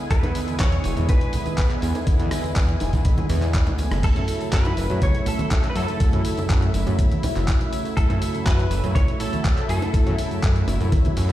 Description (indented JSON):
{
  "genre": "nu-disco, nu disco",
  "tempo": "122 BPM",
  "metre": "4/4",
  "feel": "straight",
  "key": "F# minor",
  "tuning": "A4 = 439 Hz",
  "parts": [
    { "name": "mellow synth brass", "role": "accompaniment", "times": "0.0-11.3 s", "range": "C#3 to E4", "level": "-28 LUFS", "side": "right 1 dB", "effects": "chorus, sidechain pumping, tape echo" },
    { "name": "lush unison pad", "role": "sustained chords", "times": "0.0-11.3 s", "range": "E4 to G#5", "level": "-35 LUFS", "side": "left 1 dB", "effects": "chorus, phaser, sidechain pumping" },
    { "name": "direct-recorded clean electric guitar", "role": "melody", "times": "0.1-10.6 s", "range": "A4 to C#5", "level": "-31 LUFS", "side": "equal", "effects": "ensemble chorus, ping-pong delay" },
    { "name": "fat analog bass", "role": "bass", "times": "0.1-11.3 s", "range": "E1 to F#2", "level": "-23 LUFS", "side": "equal", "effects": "tube saturation" },
    { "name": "dusty soul sampler-style drum kit", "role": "drums", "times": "0.1-11.3 s", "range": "crash cymbal, handclaps, hi-hat, rim click", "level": "-32 LUFS", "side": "equal", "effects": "small room ambience" },
    { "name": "electronic kick drum", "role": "drums", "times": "0.1-11.0 s", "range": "none", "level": "-20 LUFS", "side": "equal", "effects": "small room ambience" },
    { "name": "tambourine, bongos and congas", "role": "percussion", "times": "0.1-11.3 s", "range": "none", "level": "-30 LUFS", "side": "right 1 dB", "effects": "none" }
  ],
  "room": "little or no reverb",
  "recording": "played on a big sound system in a bare room, stone room reverb",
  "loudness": "-19 LUFS",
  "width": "side -14 dB against mid",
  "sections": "0.0-11.3 A section",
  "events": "none",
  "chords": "0.0 E7; 4.0 F#m7"
}